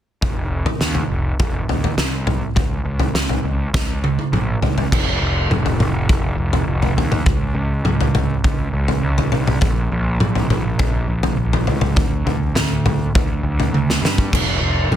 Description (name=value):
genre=quiet-loud alternative rock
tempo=102 BPM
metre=4/4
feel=straight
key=unclear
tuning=A4 = 440 Hz
part: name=fuzz picked electric bass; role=bass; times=0.2-15.0 s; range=F1 to G2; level=-21 LUFS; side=equal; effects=overdrive
part: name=loose indie drum kit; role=drums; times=0.2-15.0 s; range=crash cymbal, kick drum, snare drum, toms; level=-18 LUFS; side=equal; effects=none
room=little or no reverb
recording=dense, heavily limited modern master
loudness=-16 LUFS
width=side -11 dB against mid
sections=0.2-4.9 A section; 4.9-15.0 B section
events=drum fill 3.7-4.9, 13.7-14.3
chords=none